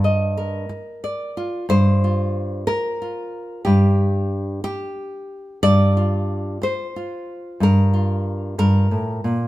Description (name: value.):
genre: folk, solo fingerstyle acoustic guitar.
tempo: 61 BPM (dotted quarters).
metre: 6/8.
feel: straight.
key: G minor.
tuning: A4 = 442 Hz.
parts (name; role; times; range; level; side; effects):
nylon-string guitar; solo; 0.0-9.5 s; G2 to Eb5; -18 LUFS; equal; none.
room: wet stone room reverb, RT60 1.4 s.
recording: band playing live in one room.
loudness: -18 LUFS.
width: side -16 dB against mid.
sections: 0.0-1.7 A section; 1.7-9.5 B section.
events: none.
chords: 0.0 Gm7.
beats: 0.69 | 1.68 2.67 | 3.66 4.65 | 5.63 6.62 | 7.61 8.60.